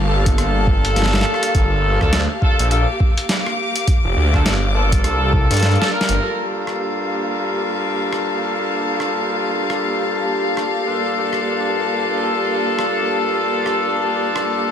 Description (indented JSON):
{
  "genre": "glitch hop",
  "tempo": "103 BPM",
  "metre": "4/4",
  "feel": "swing 60% on 16ths",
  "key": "G minor",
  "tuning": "A4 = 440 Hz",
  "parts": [
    { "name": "phased detuned saw bass", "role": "bass", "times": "0.0-6.2 s", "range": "F1 to G2", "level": "-18 LUFS", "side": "equal", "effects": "phaser, tube saturation" },
    { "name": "dark chamber string section", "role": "texture", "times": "0.0-14.7 s", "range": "Bb3 to D6", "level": "-23 LUFS", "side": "left 2 dB", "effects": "sidechain pumping" },
    { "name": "warm horn section", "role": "stabs", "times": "0.1-14.7 s", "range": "G2 to Bb4", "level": "-20 LUFS", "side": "left 1 dB", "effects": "sidechain pumping, digital delay" },
    { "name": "boom bap sampler-style drum kit", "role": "drums", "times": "0.3-14.5 s", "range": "hi-hat, rim click, snare drum", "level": "-23 LUFS", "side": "equal", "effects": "none" },
    { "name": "electronic kick drum", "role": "drums", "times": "0.3-5.5 s", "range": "none", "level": "-17 LUFS", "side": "equal", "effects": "none" }
  ],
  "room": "light reverb, digital ambience",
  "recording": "none",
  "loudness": "-16 LUFS",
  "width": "side -8 dB against mid",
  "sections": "0.0-6.2 A section; 6.2-14.7 B section",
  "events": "kick drops out 5.6-6.2; drum fill 5.6-6.2; band accent 6.0",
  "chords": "0.0 Gm9",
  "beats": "0.38 0.96 | 1.54 2.13 2.71 3.29 | 3.88 4.46 5.04 5.62 | 6.21 6.79 7.37 7.95 | 8.54 9.12 9.70 10.28 | 10.87 11.45 12.03 12.61 | 13.20 13.78 14.36"
}